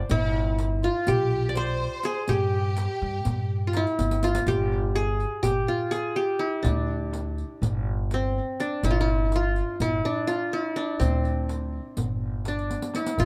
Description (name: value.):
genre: Turkish makam ensemble.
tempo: 248 BPM (eighths).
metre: 9/8.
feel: straight.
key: G makam hicaz.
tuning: A4 = 440 Hz.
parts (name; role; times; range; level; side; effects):
qanun; melody; 0.0-13.2 s; C4 to D5; -29 LUFS; equal; tape echo.
rich studio violin section; second line; 0.1-4.0, 13.2 s; E4-40c to C5; -37 LUFS; equal; none.
upright bass; bass; 0.1-13.2 s; G1 to G2; -30 LUFS; equal; none.
darbuka; percussion; 0.1-13.2 s; none; -34 LUFS; equal; none.
riq; percussion; 0.1-13.2 s; none; -39 LUFS; equal; none.
room: light reverb.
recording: dark, warm production.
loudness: -26 LUFS.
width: mono.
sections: 0.0-4.5 A section; 4.5-13.2 B section.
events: drum fill 4.0-4.5, 12.7-13.2.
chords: none.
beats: | 0.11 0.35 0.59 0.83 1.08 1.32 1.56 1.80 2.04 | 2.29 2.53 2.77 3.01 3.26 3.50 3.74 3.98 4.22 | 4.47 4.71 4.95 5.19 5.44 5.68 5.92 6.16 6.41 | 6.65 6.89 7.13 7.38 7.62 7.86 8.10 8.35 8.59 | 8.83 9.07 9.32 9.56 9.80 10.04 10.29 10.53 10.77 | 11.01 11.25 11.50 11.74 11.98 12.22 12.46 12.71 12.95 | 13.19.